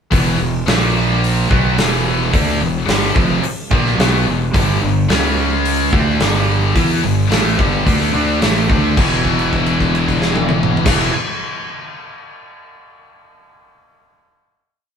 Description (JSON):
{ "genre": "hard rock", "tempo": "108 BPM", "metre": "4/4", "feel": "straight", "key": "E dorian", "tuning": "A4 = 444 Hz", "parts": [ { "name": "scooped high-gain guitar", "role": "riff", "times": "0.1-11.1 s", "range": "E2 to E4", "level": "-19 LUFS", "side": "left 6 dB", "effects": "distortion" }, { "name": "sludgy distorted guitar", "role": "riff", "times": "0.1-11.1 s", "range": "E2 to E4", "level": "-19 LUFS", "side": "right 6 dB", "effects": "overdrive" }, { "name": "fuzz fingered electric bass", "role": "bass", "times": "0.1-11.1 s", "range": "E1 to E2", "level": "-20 LUFS", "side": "equal", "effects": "overdrive" }, { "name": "big rock drum kit", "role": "drums", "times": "0.1-11.0 s", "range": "crash cymbal, hi-hat, kick drum, snare drum, toms", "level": "-18 LUFS", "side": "equal", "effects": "none" } ], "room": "moderate studio reverb, RT60 0.5 s", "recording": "band playing live in one room", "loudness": "-13 LUFS", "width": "side -7 dB against mid", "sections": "0.1-9.0 riff; 9.0-11.2 final chord", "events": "held note 9.0-10.9", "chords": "0.1 E5; 0.7 A#5; 1.5 Em; 4.5 G5; 5.1 C#5; 5.9 G5; 9.0 E5", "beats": "| 0.11 0.67 1.22 1.78 | 2.33 2.88 3.44 3.99 | 4.54 5.09 5.64 6.20 | 6.75 7.30 7.86 8.41 | 8.97 9.52 10.08 10.64" }